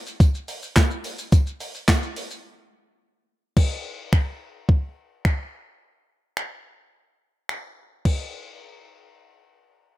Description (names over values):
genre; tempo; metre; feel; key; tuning
pop; 107 BPM; 4/4; straight; none; none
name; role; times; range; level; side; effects
clean 12-bit digital drum machine; drums; 0.1-8.2 s; crash cymbal, finger snaps, handclaps, hi-hat, kick drum, shaker, snare drum; -20 LUFS; equal; none
tambourine; percussion; 0.2-2.3 s; none; -42 LUFS; left 5 dB; none
room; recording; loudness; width
digital ambience; none; -21 LUFS; side -17 dB against mid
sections
0.0-3.6 A section; 3.6-8.1 B section; 8.1-10.0 C section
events
break 2.4-3.6, 5.8-8.1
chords
none